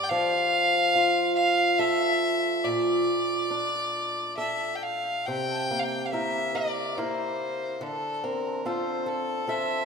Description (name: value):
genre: celtic folk, Celtic slow air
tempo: 71 BPM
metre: 3/4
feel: rubato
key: C mixolydian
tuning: A4 = 441 Hz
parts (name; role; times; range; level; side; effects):
- warm fiddle; melody; 0.0-9.8 s; A4 to A5; -26 LUFS; equal; none
- fingerpicked swing-style acoustic guitar; accompaniment; 0.0-9.8 s; G2 to Bb4; -28 LUFS; equal; none
room: wet church reverb, RT60 2.8 s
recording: minimal, uncompressed stereo recording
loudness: -24 LUFS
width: side -5 dB against mid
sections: 0.0-5.3 A section; 5.3-9.8 B section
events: none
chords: 0.1 F; 2.6 Bbmaj7; 5.3 C7; 7.8 Dm7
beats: | 0.11 0.94 1.79 | 2.64 3.50 4.38 | 5.27 6.13 6.98 | 7.82 8.66 9.49